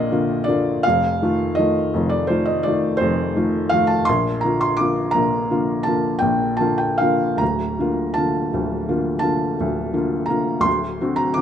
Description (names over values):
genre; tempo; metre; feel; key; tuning
classical, romantic nocturne for solo piano; 56 BPM (dotted quarters); 9/8; rubato; Bb major; A4 = 440 Hz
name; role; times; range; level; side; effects
felt-muted upright piano; solo; 0.0-11.4 s; D1 to D6; -18 LUFS; equal; none
room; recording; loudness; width
light reverb; close, detailed microphones; -18 LUFS; side -9 dB against mid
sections
0.0-11.4 A section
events
none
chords
0.0 Bb; 0.8 F7; 4.1 Bb; 7.4 Bb/D; 10.7 D7